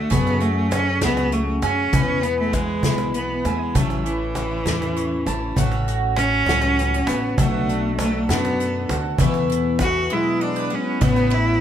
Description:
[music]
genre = acoustic folk duo or small band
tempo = 66 BPM (dotted quarters)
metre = 6/8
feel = straight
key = A major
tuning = A4 = 443 Hz
[part]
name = clear cello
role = melody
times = 0.0-11.6 s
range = E3 to F#4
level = -22 LUFS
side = right 1 dB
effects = none
[part]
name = picked twelve-string acoustic guitar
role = accompaniment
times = 0.0-11.6 s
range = E2 to G#4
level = -25 LUFS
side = left 4 dB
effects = none
[part]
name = bowl-back mandolin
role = arpeggios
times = 0.0-11.6 s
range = G#3 to A5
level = -29 LUFS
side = right 8 dB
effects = none
[part]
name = upright bass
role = bass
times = 0.0-11.6 s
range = A1 to F#2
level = -26 LUFS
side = equal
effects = none
[part]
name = unplugged drum kit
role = drums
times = 0.1-11.5 s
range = hi-hat, kick drum, ride cymbal, snare drum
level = -27 LUFS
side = left 1 dB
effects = none
[part]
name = cajon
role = percussion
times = 0.1-11.3 s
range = none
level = -24 LUFS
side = equal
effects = none
[sound]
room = moderate studio reverb, RT60 0.5 s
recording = none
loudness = -18 LUFS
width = side -10 dB against mid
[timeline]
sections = 0.0-11.0 A section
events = cello solo 0.0-11.0; break 10.1-11.0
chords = 0.1 F#madd9; 1.9 E; 3.8 A; 5.6 F#m/A; 7.4 Bm7; 9.2 Esus4; 10.1 Eadd9; 11.0 Aadd9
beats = | 0.11 1.02 | 1.94 2.85 | 3.75 4.66 | 5.57 6.48 | 7.39 8.30 | 9.20 10.11 | 11.02

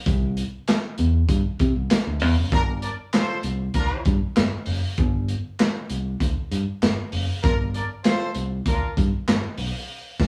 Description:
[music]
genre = funk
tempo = 98 BPM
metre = 4/4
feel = straight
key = unclear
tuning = A4 = 440 Hz
[part]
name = fingered electric bass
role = bass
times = 0.1-10.3 s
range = F#1 to C3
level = -26 LUFS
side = equal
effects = none
[part]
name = crunchy breakbeat drum kit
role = drums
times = 0.1-10.3 s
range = crash cymbal, handclaps, hi-hat, kick drum, snare drum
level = -25 LUFS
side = equal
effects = none
[part]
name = warm horn section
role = second line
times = 2.5-8.9 s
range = D4 to D5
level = -30 LUFS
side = equal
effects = none
[sound]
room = moderate studio reverb, RT60 0.8 s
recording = band playing live in one room, small room ambience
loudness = -23 LUFS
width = mono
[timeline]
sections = 0.0-10.3 A section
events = band accent 9.9-10.3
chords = 0.1 C; 2.5 N.C.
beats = | 0.07 0.68 1.29 1.91 | 2.52 3.14 3.75 4.37 | 4.98 5.59 6.21 6.82 | 7.44 8.05 8.66 9.28 | 9.89

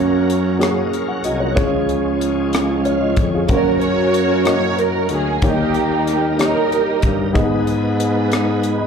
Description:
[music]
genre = slow gospel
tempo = 62 BPM (dotted quarters)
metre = 6/8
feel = straight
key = F# major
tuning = A4 = 440 Hz
[part]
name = warm upright piano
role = accompaniment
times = 0.0-8.9 s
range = G#2 to B5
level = -21 LUFS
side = left 2 dB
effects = slapback echo
[part]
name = bright tonewheel organ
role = sustained chords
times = 0.0-8.9 s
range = E#3 to G#5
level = -25 LUFS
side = right 4 dB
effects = overdrive, chorus vibrato, slow rotary speaker
[part]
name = mellow baritone saxophone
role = bass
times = 0.0-8.9 s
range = B#1 to G#2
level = -20 LUFS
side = right 1 dB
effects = none
[part]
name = crisp fusion drum kit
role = drums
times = 0.3-8.8 s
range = hi-hat, kick drum, rim click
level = -21 LUFS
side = left 1 dB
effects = none
[part]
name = warm symphonic string section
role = melody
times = 3.5-7.3 s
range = A#3 to C#5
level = -18 LUFS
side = right 2 dB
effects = slapback echo
[sound]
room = light reverb, small room reverb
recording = live gig heard through the venue's PA, club reverb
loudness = -15 LUFS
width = side -6 dB against mid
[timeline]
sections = 0.0-8.9 A section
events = none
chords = 0.0 F#; 1.6 C#; 3.5 F#; 5.4 D#; 7.4 G#m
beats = 0.61 | 1.57 2.54 | 3.50 4.46 | 5.43 6.39 | 7.35 8.32

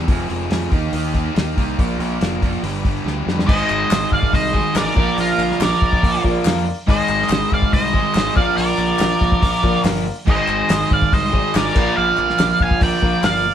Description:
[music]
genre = classic rock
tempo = 142 BPM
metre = 4/4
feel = straight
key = unclear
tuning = A4 = 440 Hz
[part]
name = overdriven electric guitar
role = riff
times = 0.0-13.4 s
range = F2 to Bb4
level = -26 LUFS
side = left 7 dB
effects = none
[part]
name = overdriven semi-hollow guitar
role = riff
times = 0.0-13.4 s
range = F2 to Eb4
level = -24 LUFS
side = right 6 dB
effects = none
[part]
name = growling fingered electric bass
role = bass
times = 0.0-13.5 s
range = F1 to F2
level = -25 LUFS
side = equal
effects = overdrive
[part]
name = cloth-damped thuddy drum kit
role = drums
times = 0.1-13.3 s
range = crash cymbal, hi-hat, kick drum, snare drum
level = -20 LUFS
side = equal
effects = none
[part]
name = octave-fuzz lead guitar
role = melody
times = 3.5-13.5 s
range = Bb4 to Ab5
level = -20 LUFS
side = right 2 dB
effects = wah, distortion
[part]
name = octave-fuzz lead guitar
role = second line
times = 3.5-13.5 s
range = F4 to F5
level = -25 LUFS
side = right 3 dB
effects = distortion
[part]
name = dark concert grand piano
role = accompaniment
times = 3.5-13.5 s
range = F4 to Eb5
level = -29 LUFS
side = left 4 dB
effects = none
[part]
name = overdriven electric guitar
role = riff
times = 3.5-13.4 s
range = Ab2 to Bb3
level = -27 LUFS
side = left 2 dB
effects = none
[part]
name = group handclap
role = percussion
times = 3.7-13.3 s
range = none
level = -30 LUFS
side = left 5 dB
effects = none
[sound]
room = moderate studio reverb, RT60 0.6 s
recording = band playing live in one room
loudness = -15 LUFS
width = side -9 dB against mid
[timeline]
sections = 0.0-3.5 A section; 3.5-13.5 B section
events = drum fill 3.1-3.5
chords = 0.1 Fm; 0.7 Eb; 1.8 Bb; 2.6 G; 3.5 Ab; 5.0 Bb; 6.9 Ab; 8.4 Bb; 10.3 Ab; 11.8 Bb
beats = | 0.08 0.51 0.93 1.36 | 1.78 2.21 2.63 3.06 | 3.48 3.91 4.33 4.75 | 5.18 5.60 6.03 6.45 | 6.88 7.30 7.72 8.15 | 8.57 9.00 9.42 9.84 | 10.27 10.69 11.12 11.54 | 11.96 12.39 12.81 13.23

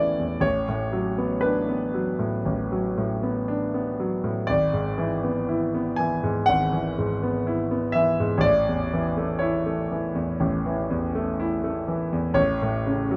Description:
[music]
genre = classical, romantic nocturne for solo piano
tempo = 60 BPM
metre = 4/4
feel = rubato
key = A major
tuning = A4 = 441 Hz
[part]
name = clear grand piano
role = solo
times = 0.0-13.2 s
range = G#1 to G#5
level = -25 LUFS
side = equal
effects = none
[sound]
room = light reverb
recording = close, detailed microphones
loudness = -25 LUFS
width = mono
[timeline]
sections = 0.0-13.2 A section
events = none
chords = 0.4 Bm7/A; 4.5 E7/G#; 8.4 A; 12.4 F#m/A (rootless)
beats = | 0.45 1.44 2.46 3.48 | 4.49 5.48 6.47 7.46 | 8.43 9.41 10.41 11.40 | 12.39

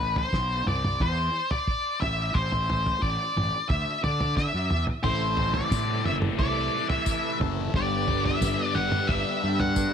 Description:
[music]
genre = psychedelic rock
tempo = 89 BPM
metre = 4/4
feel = straight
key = A dorian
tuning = A4 = 439 Hz
[part]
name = octave-fuzz lead guitar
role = melody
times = 0.0-9.9 s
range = B4 to F#5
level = -27 LUFS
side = left 2 dB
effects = distortion, tape echo
[part]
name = fuzz fingered electric bass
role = bass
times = 0.0-9.9 s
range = F#1 to D3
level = -29 LUFS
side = right 1 dB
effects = overdrive
[part]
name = cloth-damped thuddy drum kit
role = drums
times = 0.2-9.9 s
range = kick drum, snare drum, toms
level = -28 LUFS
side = right 1 dB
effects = none
[part]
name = tonewheel organ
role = sustained chords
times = 5.0-9.9 s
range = C3 to B4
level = -33 LUFS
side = right 14 dB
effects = slow rotary speaker, overdrive, chorus vibrato
[part]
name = thick fuzz guitar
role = riff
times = 5.0-9.9 s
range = G2 to A4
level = -31 LUFS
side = left 10 dB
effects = distortion, phaser
[part]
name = tambourine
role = percussion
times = 5.7-9.9 s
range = none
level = -39 LUFS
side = left 17 dB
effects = none
[sound]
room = light reverb, small room ambience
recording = 1960s-style stereo with parts hard left and right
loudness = -23 LUFS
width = side -7 dB against mid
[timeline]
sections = 0.0-9.9 A section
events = drum fill 4.4-5.0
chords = 0.0 Am; 0.7 C; 2.0 Am; 3.7 N.C.; 5.0 Am; 7.7 G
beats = 0.33 1.00 1.68 | 2.35 3.02 3.70 4.37 | 5.04 5.72 6.39 7.07 | 7.74 8.42 9.09 9.77

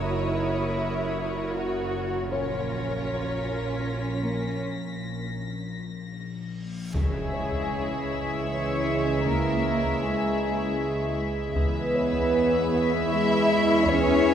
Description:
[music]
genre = cinematic, suspense film score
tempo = 78 BPM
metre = 3/4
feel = straight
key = C# dorian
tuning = A4 = 440 Hz
[part]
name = warm studio violin section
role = melody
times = 0.0-14.3 s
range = C#5 to E5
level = -34 LUFS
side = left 3 dB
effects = none
[part]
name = rich studio viola section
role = accompaniment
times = 0.0-14.3 s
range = E4 to A#4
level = -34 LUFS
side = right 1 dB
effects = none
[part]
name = dark studio cello section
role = bass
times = 0.0-14.3 s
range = G#3 to F#4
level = -29 LUFS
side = right 2 dB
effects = none
[part]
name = dark studio double bass section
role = bass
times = 0.0-14.3 s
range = F#1 to E2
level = -36 LUFS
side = right 3 dB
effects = none
[part]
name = analog drone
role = drone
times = 0.0-14.3 s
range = F#1 to E2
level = -33 LUFS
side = right 1 dB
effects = chorus
[part]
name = warm baby grand piano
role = texture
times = 0.0-14.3 s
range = A#3 to C#5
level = -40 LUFS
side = left 3 dB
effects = none
[part]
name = warm symphonic violin section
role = texture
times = 0.0-14.3 s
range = B5 to B6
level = -40 LUFS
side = left 5 dB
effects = none
[part]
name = reverse cymbal and impact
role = sound effects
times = 6.6-9.2 s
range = none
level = -41 LUFS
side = equal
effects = none
[part]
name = warm studio violin section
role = second line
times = 6.9-14.3 s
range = G#4 to E5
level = -29 LUFS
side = equal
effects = none
[part]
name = dark French horn section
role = sustained chords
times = 6.9-14.3 s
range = C#3 to G#3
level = -30 LUFS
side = left 4 dB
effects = none
[part]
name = warm trombone section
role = sustained chords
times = 6.9-14.3 s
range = E3 to G#3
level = -33 LUFS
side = right 2 dB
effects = none
[part]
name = taiko ensemble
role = drums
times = 6.9-14.3 s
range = none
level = -32 LUFS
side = equal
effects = none
[part]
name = timpani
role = percussion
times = 6.9-8.1 s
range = C#3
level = -43 LUFS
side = right 1 dB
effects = none
[sound]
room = wet cathedral reverb, RT60 5.7 s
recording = recorded in a church or concert hall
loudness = -24 LUFS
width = side -9 dB against mid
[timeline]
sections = 0.0-6.9 A section; 6.9-14.3 B section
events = break 4.6-6.9; reverse cymbal 6.6-6.9; impact 6.9-9.2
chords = 0.0 F#; 2.3 A#m; 6.9 C#m; 11.6 E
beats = | 0.02 0.79 1.55 | 2.32 3.09 3.86 | 4.63 5.40 6.17 | 6.94 7.71 8.48 | 9.25 10.02 10.79 | 11.55 12.32 13.09 | 13.86

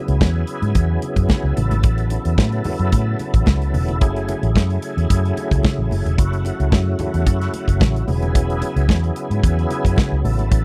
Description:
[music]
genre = disco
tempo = 111 BPM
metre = 4/4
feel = straight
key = unclear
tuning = A4 = 440 Hz
[part]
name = overdriven tonewheel organ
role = sustained chords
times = 0.0-10.6 s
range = C#3 to A4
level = -27 LUFS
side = equal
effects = chorus vibrato, slow rotary speaker
[part]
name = vintage muted fingered electric bass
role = bass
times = 0.1-10.6 s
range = E1 to A2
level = -21 LUFS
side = equal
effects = none
[part]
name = modern studio drum kit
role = drums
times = 0.1-10.6 s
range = hi-hat, kick drum, snare drum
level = -19 LUFS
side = equal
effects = none
[part]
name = congas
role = percussion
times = 0.2-10.5 s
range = none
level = -31 LUFS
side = equal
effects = none
[sound]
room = little or no reverb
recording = dry, close 1970s-style studio recording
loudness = -19 LUFS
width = mono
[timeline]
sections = 0.0-10.6 A section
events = none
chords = 0.0 E69; 1.6 A69; 4.0 F#m9; 8.1 E69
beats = 0.22 0.76 1.30 | 1.84 2.39 2.93 3.47 | 4.01 4.56 5.10 5.64 | 6.18 6.73 7.27 7.81 | 8.35 8.89 9.43 9.97 | 10.51

